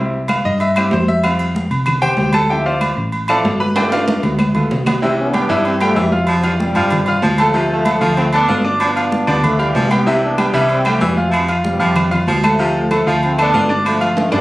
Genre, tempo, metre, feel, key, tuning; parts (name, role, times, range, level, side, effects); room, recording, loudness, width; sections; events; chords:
latin, salsa; 190 BPM; 4/4; straight; C major; A4 = 440 Hz
bright baby grand piano; accompaniment; 0.0-14.4 s; E3 to F6; -18 LUFS; equal
hollow-body short-scale fingered electric bass; bass; 0.0-14.4 s; G1 to G2; -20 LUFS; equal
congas; percussion; 0.1-14.4 s; -22 LUFS; equal
claves; percussion; 0.3-5.0, 10.4-14.0 s; -27 LUFS; left 2 dB
timbales and agogo bells; percussion; 0.3-14.4 s; -21 LUFS; right 2 dB
clear trombone section; melody; 4.9-14.4 s; C3 to D4; -19 LUFS; equal
warm baritone saxophone; second line; 5.0-14.4 s; C3 to G3; -22 LUFS; right 1 dB
moderate studio ambience, RT60 0.5 s; recorded on a phone in the room, studio reverb, compression; -13 LUFS; side -17 dB against mid
0.0-5.0 A section; 5.0-14.4 B section
grand piano solo 0.0-5.0; drum fill 3.8-5.0, 14.2
0.0 C; 1.2 Fsus2; 2.5 Dm7; 3.8 G7; 5.0 C; 6.3 Fsus2; 7.5 Dm7; 8.8 G7; 10.1 C; 11.3 Fsus2; 12.6 Dm7; 13.9 G7(no3)